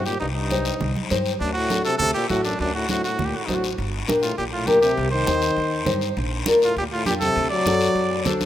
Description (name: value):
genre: latin, cumbia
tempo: 202 BPM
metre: 4/4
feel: straight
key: G minor from 3.8 s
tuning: A4 = 441 Hz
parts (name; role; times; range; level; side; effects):
- clear trumpet; melody; 0.0-8.4 s; D4 to D5; -25 LUFS; right 2 dB; none
- breathy trombone; second line; 0.0-8.4 s; F#2 to F#3; -27 LUFS; left 4 dB; none
- nylon-string guitar; accompaniment; 0.0-8.5 s; D4 to F#5; -24 LUFS; left 2 dB; none
- upright bass; bass; 0.0-8.5 s; G1 to G2; -29 LUFS; right 1 dB; none
- guiro; percussion; 0.1-8.5 s; none; -31 LUFS; left 7 dB; none
- congas; percussion; 0.5-8.5 s; none; -30 LUFS; right 3 dB; none
room: moderate lush hall reverb, RT60 2.6 s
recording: rough home demo mix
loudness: -19 LUFS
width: side -11 dB against mid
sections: 0.0-3.8 A section; 3.8-8.5 B section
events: nylon-string guitar fill 7.9-8.5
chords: 0.0 Cm; 1.4 D7; 3.8 Gm; 5.0 Cm; 6.2 Bb; 7.4 D7